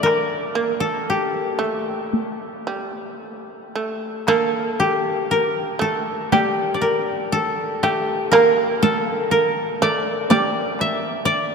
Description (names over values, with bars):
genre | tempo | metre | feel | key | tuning
japanese traditional, Japanese chamber music | 53-62 BPM | 4/4 | rubato | G kumoi | A4 = 440 Hz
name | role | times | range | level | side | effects
koto | melody | 0.0-11.5 s | D4 to E5 | -20 LUFS | left 1 dB | none
shamisen | second line | 0.0-11.3 s | G3 to Bb3 | -24 LUFS | right 3 dB | none
taiko ensemble | percussion | 0.1-11.0 s | none | -25 LUFS | equal | none
room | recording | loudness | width
wet cathedral reverb, RT60 6.6 s | in a vast, echoing space | -18 LUFS | side -5 dB against mid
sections
0.0-4.3 A section; 4.3-11.5 B section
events
none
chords
none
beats
| 0.04 1.07 2.12 3.21 | 4.29 5.31 6.33 7.33 | 8.33 9.32 10.30 11.27